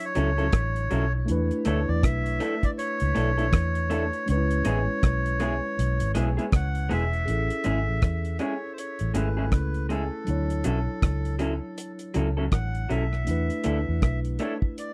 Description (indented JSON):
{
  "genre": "lovers rock reggae",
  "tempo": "80 BPM",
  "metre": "4/4",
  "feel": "swing 60% on 16ths",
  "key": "A major",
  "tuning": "A4 = 440 Hz",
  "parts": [
    { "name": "melodica", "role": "melody", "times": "0.0-14.9 s", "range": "A4 to F#5", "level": "-34 LUFS", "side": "equal", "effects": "tape echo" },
    { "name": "mellow tine electric piano", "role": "accompaniment", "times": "0.0-14.9 s", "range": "F#3 to C#5", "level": "-35 LUFS", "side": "equal", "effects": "none" },
    { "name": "cloth-damped thuddy drum kit", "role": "drums", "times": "0.0-14.9 s", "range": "hi-hat, kick drum, rim click", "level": "-28 LUFS", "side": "equal", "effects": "none" },
    { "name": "electric guitar through a small old amp", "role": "stabs", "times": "0.2-14.5 s", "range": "F#3 to A4", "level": "-31 LUFS", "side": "equal", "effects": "none" },
    { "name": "vintage muted fingered electric bass", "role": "bass", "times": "0.2-14.4 s", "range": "E1 to E2", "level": "-29 LUFS", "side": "equal", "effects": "none" }
  ],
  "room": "little or no reverb",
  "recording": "dry, close 1970s-style studio recording",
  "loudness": "-26 LUFS",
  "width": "mono",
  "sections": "0.0-7.3 A section; 7.3-14.9 B section",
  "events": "melodica solo 0.0-7.3",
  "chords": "0.0 Dmaj9; 1.3 E7sus4; 4.3 C#m7; 7.3 Amaj7; 10.3 Dmaj9; 13.3 E7sus4"
}